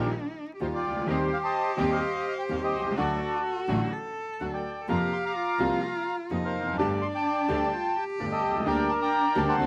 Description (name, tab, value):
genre	tango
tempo	127 BPM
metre	4/4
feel	rubato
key	G minor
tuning	A4 = 444 Hz
part	bandoneon	melody	0.0-9.7 s	F4 to D6	-30 LUFS	equal	none
part	warm cello	second line	0.0-9.7 s	C4 to A4	-36 LUFS	equal	none
part	clear grand piano	accompaniment	0.0-9.7 s	G1 to G4	-33 LUFS	equal	none
part	bright chamber string section	stabs	0.0-9.7 s	A3 to G4	-40 LUFS	equal	none
part	clear double bass	bass	0.0-9.7 s	F1 to F2	-38 LUFS	equal	none
room	little or no reverb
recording	recorded outdoors, with no room sound, vinyl crackle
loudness	-28 LUFS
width	mono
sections	0.0-9.7 A section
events	none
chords	0.0 Ebadd9; 1.1 Cm/Eb; 3.0 D; 4.9 Fsus4; 6.8 Gsus2; 8.7 Gm/D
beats	0.14 0.60 | 1.07 1.55 2.02 2.49 | 2.97 3.44 3.92 4.40 | 4.88 5.36 5.83 6.31 | 6.78 7.25 7.72 8.19 | 8.66 9.13 9.59